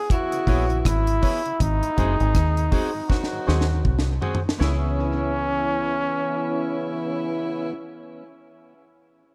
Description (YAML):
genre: roots reggae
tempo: 80 BPM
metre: 4/4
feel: swing 60% on 16ths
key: C# minor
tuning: A4 = 440 Hz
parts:
  - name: brilliant trombone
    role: melody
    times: 0.0-7.8 s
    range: C#4 to G#4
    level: -29 LUFS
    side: equal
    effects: tape echo
  - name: mellow horn section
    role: second line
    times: 0.1-7.7 s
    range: C#3 to G#4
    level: -34 LUFS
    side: equal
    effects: tape echo
  - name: deep reggae drum kit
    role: drums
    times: 0.1-4.8 s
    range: hi-hat, kick drum, rim click, snare drum, toms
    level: -26 LUFS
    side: equal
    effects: none
  - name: mellow tonewheel organ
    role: accompaniment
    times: 0.3-7.7 s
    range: G#2 to C#4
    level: -37 LUFS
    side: equal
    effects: slow rotary speaker, analog delay
  - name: clean electric guitar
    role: accompaniment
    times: 0.5-8.1 s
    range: B3 to G#4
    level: -38 LUFS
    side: equal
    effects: tape echo
  - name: percussive organ stab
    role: stabs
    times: 0.5-7.7 s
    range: E4 to C#5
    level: -37 LUFS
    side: equal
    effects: chorus, phaser
  - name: deep dub fingered electric bass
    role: bass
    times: 0.5-7.7 s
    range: F#1 to D#2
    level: -25 LUFS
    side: equal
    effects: none
room: light reverb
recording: none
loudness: -23 LUFS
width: mono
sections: 0.0-4.6 A section; 4.6-7.6 B section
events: drum fill 3.1-4.6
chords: 0.0 C#m7; 1.6 G#7; 4.6 C#m7